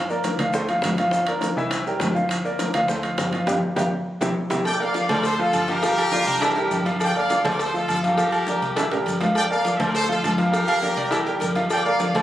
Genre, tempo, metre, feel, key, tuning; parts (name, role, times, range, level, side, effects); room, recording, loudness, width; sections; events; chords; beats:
latin, salsa; 204 BPM; 4/4; straight; A4 = 440 Hz
clear baby grand piano; accompaniment; 0.0-12.2 s; E3 to F5; -24 LUFS; equal
vintage muted fingered electric bass; bass; 0.0-12.2 s; G1 to D2; -32 LUFS; equal
congas; percussion; 0.1-12.2 s; -29 LUFS; left 1 dB
maracas; percussion; 0.1-12.2 s; -41 LUFS; left 3 dB
bongos and cowbell; percussion; 0.2-12.2 s; -29 LUFS; left 2 dB
timbales and agogo bells; percussion; 0.2-12.2 s; -28 LUFS; right 2 dB
bright trumpet section; melody; 4.7-12.2 s; F4 to G5; -24 LUFS; equal
metal-body resonator slide guitar; second line; 6.0-6.9, 10.7-11.6 s; D4 to F5; -27 LUFS; right 1 dB
light reverb; recorded on a phone in the room, club reverb, compression; -19 LUFS; side -13 dB against mid
0.0-4.7 A section; 4.7-12.2 B section
band accent 3.5-4.7; drum fill 4.1-4.7, 8.8-9.4
0.0 Gm7; 0.5 Dm7; 1.1 Gm7; 1.7 C7; 2.3 Gm7; 2.9 Dm7; 3.5 G5; 4.1 C; 4.7 Bbmaj13; 5.2 Dm7; 5.8 Gm7; 6.4 C7; 7.0 Gm7; 7.6 Dm7; 8.2 Gm7; 8.8 C7; 9.4 Gm7; 9.9 Dm7; 10.5 Gm7; 11.1 C7; 11.7 Gm7
0.24 0.54 0.83 | 1.12 1.42 1.71 2.01 | 2.30 2.60 2.89 3.18 | 3.48 3.77 4.07 4.36 | 4.65 4.95 5.24 5.53 | 5.83 6.12 6.42 6.71 | 7.00 7.30 7.59 7.88 | 8.18 8.47 8.77 9.06 | 9.36 9.65 9.94 10.24 | 10.53 10.82 11.12 11.41 | 11.71 12.00